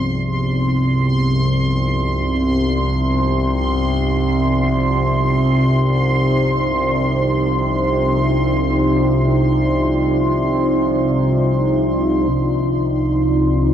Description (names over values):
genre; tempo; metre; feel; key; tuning
dark ambient drone; free time; none; none; C harmonic minor; A4 = 442 Hz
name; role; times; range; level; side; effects
deep dark ambient pad; sustained chords; 0.0-13.7 s; Eb4 to D5; -22 LUFS; equal; chorus, built-in reverb
quartz singing bowl; arpeggios; 0.0-4.9 s; F3 to B3; -31 LUFS; left 1 dB; none
analog drone; drone; 0.0-13.7 s; C2 to C3; -17 LUFS; equal; chorus
bubbling stepped-filter texture; texture; 0.0-12.3 s; C6; -24 LUFS; right 1 dB; chorus, built-in reverb
room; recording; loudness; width
wet huge ambient reverb, RT60 8.8 s; worn, warbling old tape, cassette tape, warbly pitch drift; -15 LUFS; side -9 dB against mid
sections
0.0-12.3 A section; 12.3-13.7 B section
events
fade-in on ambient pad 0.0-12.3; fade-in on synth texture 0.0-12.3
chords
0.0 Cmadd9